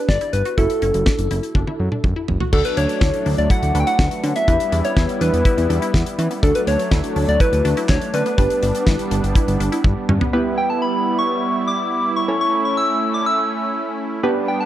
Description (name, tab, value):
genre	synth-pop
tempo	123 BPM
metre	4/4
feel	straight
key	E dorian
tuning	A4 = 440 Hz
part	soft struck synth lead	melody	0.0-14.7 s	A4 to E6	-21 LUFS	left 1 dB	chorus, slapback echo
part	warm analog keys	accompaniment	0.0-14.7 s	B3 to C#5	-26 LUFS	right 2 dB	chorus
part	resonant blip pluck	arpeggios	0.0-10.3 s	B3 to F#4	-29 LUFS	left 2 dB	phaser, slapback echo
part	fat analog bass	bass	0.1-10.2 s	F#1 to E3	-20 LUFS	equal	none
part	damped 70s drum kit	drums	0.1-10.3 s	crash cymbal, handclaps, hi-hat, kick drum, snare drum, toms	-20 LUFS	equal	none
part	warm analog pad	sustained chords	2.5-14.7 s	F#3 to E4	-25 LUFS	right 2 dB	chorus
room	light reverb, small room ambience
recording	dark, warm production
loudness	-16 LUFS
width	side -12 dB against mid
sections	0.0-2.5 A section; 2.5-10.3 B section; 10.3-14.7 C section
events	drum fill 1.6-2.5, 9.8-10.3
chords	0.0 G; 0.6 F#m7; 2.5 D; 4.5 Em; 6.4 D; 8.4 G; 10.3 Em; 12.3 A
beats	0.09 | 0.58 1.06 1.55 2.04 | 2.53 3.02 3.50 3.99 | 4.48 4.97 5.46 5.94 | 6.43 6.92 7.41 7.89 | 8.38 8.87 9.36 9.85 | 10.33 10.82 11.31 11.80 | 12.29 12.77 13.26 13.75 | 14.24